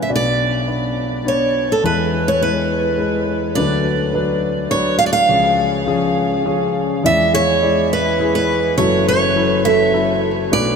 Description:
folk; 104 BPM; 3/4; straight; F# minor; A4 = 440 Hz
picked steel-string acoustic guitar; melody; 0.0-10.8 s; A4 to E#5; -17 LUFS; right 2 dB
warm concert grand piano; accompaniment; 0.0-10.8 s; F#1 to G#5; -18 LUFS; left 2 dB
felt-muted upright piano; arpeggios; 4.1-10.3 s; F#4 to B4; -23 LUFS; right 6 dB
wet huge ambient reverb, RT60 8.2 s; in a vast, echoing space; -14 LUFS; side -6 dB against mid
0.1-7.0 A section; 7.0-10.8 B section
0.1 Bmadd9; 1.8 E; 3.6 Bm/D; 5.3 C#; 7.0 E7; 8.8 F#m7

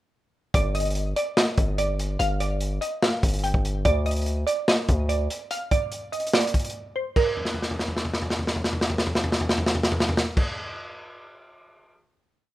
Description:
hip hop, trap; 145 BPM; 4/4; half-time; G minor; A4 = 442 Hz
glassy wavetable pluck; melody; 0.5-10.4 s; Bb4 to G5; -27 LUFS; right 2 dB; chorus, low-pass filter, plate reverb
distorted 808-style bass; bass; 0.5-5.3 s; G1 to D2; -25 LUFS; equal; distortion
crunchy breakbeat drum kit; drums; 0.5-11.9 s; crash cymbal, hi-hat, kick drum, snare drum, toms; -24 LUFS; equal
light reverb; rough home demo mix; -22 LUFS; side -15 dB against mid
0.5-7.2 verse; 7.2-10.5 final note
break 6.7-7.2; drum fill 7.4-10.4
0.5 G5; 3.9 N.C.

